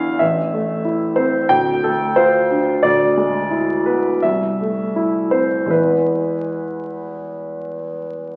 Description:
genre	classical, romantic character piece for solo piano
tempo	76-96 BPM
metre	4/4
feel	rubato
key	A minor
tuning	A4 = 438 Hz
part	warm grand piano	solo	0.0-8.4 s	A1 to G#5	-19 LUFS	equal	none
room	wet recital hall reverb, RT60 1.4 s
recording	very old 78 rpm record, vinyl crackle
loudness	-18 LUFS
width	mono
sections	0.0-8.4 A section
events	none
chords	0.2 Am; 1.5 Dm7; 2.8 E7/D; 4.2 Am/C; 5.7 E

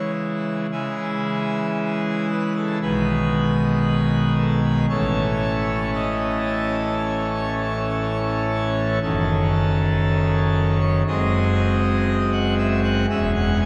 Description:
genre	classical, chorale-style piece for pipe organ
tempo	58 BPM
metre	4/4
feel	rubato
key	C# minor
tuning	A4 = 440 Hz
part	pipe organ, full organ	solo	0.0-13.7 s	E1 to G#5	-21 LUFS	equal	none
room	wet cathedral reverb, RT60 4.0 s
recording	heard from further back in the room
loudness	-21 LUFS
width	mono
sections	0.7-13.7 A section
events	none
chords	0.0 C#m; 2.8 G#m/B; 4.9 A; 9.0 D#m7b5/F#; 11.1 G#7/F#; 13.1 C#m/E

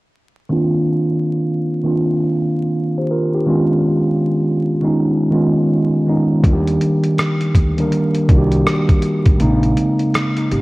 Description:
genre	lo-fi hip hop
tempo	81 BPM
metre	4/4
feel	swing 62% on 16ths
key	C minor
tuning	A4 = 441 Hz
part	mellow tine electric piano	accompaniment	0.5-10.6 s	Db3 to C5	-15 LUFS	equal	slow stereo tremolo, cassette tape, low-pass filter
part	upright bass	bass	6.4-10.6 s	Ab1 to Eb2	-20 LUFS	equal	none
part	dusty soul sampler-style drum kit	drums	6.4-10.6 s	hi-hat, kick drum, rim click	-16 LUFS	equal	none
room	moderate plate reverb, RT60 3.1 s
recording	worn, warbling old tape, cassette tape, vinyl crackle, warbly pitch drift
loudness	-14 LUFS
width	side -21 dB against mid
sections	0.5-10.6 A section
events	filter sweep on tine electric piano 0.5-10.6; break 9.4-10.6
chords	0.5 Cm11; 3.5 Db9; 6.4 Ebmaj7; 9.4 Bbm11

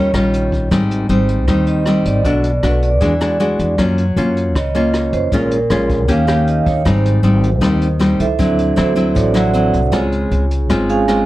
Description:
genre	bossa nova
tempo	156 BPM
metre	4/4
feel	straight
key	unclear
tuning	A4 = 438 Hz
part	nylon-string guitar	accompaniment	0.0-11.3 s	Ab2 to G4	-16 LUFS	left 1 dB	none
part	vibraphone with medium mallets	accompaniment	0.0-11.3 s	C4 to Ab5	-19 LUFS	right 4 dB	none
part	upright bass	bass	0.0-11.2 s	Ab1 to Gb2	-18 LUFS	equal	none
part	jazz brush drum kit	drums	0.1-11.2 s	hi-hat, kick drum, rim click	-24 LUFS	equal	vintage 12-bit sampler grit
room	light reverb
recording	dry, gritty hardware recording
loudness	-13 LUFS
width	side -16 dB against mid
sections	0.7-11.3 A section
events	vibraphone solo 0.0-11.3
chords	0.0 Eb9; 0.7 Abmaj7; 2.2 Bm7; 3.0 E9; 3.8 Gbmaj7; 5.3 Bbm7; 6.1 Eb7; 6.9 Abmaj7; 8.4 D9; 9.9 Dbmaj7

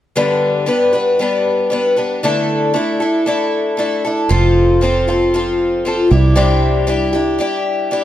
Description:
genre	rock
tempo	116 BPM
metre	4/4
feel	straight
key	G major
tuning	A4 = 440 Hz
part	picked twelve-string acoustic guitar	accompaniment	0.2-8.0 s	G2 to B4	-14 LUFS	left 1 dB	none
part	fingered electric bass	bass	4.3-7.4 s	F1 to C2	-16 LUFS	right 2 dB	none
room	light reverb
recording	none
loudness	-13 LUFS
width	side -12 dB against mid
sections	0.2-8.0 A section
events	break 7.4-8.0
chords	0.2 G; 2.2 Dsus2; 4.3 F; 6.1 Cadd9

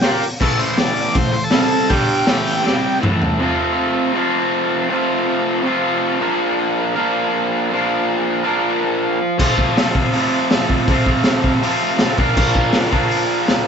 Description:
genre	garage rock duo or trio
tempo	160 BPM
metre	4/4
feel	straight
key	unclear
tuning	A4 = 439 Hz
part	overdriven combo organ	melody	0.0-3.0 s	G4 to D5	-20 LUFS	equal	phaser
part	raw garage guitar	riff	0.0-13.7 s	F2 to Bb4	-17 LUFS	equal	overdrive
part	crunchy breakbeat drum kit	drums	0.0-3.3, 9.4-13.6 s	crash cymbal, hi-hat, kick drum, snare drum, toms	-18 LUFS	equal	none
room	moderate small room reverb, RT60 0.5 s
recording	band playing live in one room, nothing above 7.9 kHz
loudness	-15 LUFS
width	side -6 dB against mid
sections	0.0-3.4 A section; 3.4-13.7 B section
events	drum fill 2.7-3.4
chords	0.4 A5; 1.5 C5; 1.9 G5; 2.3 A5; 2.7 C5; 3.0 A5; 3.4 F; 6.2 Bb; 9.4 F; 12.2 Bb

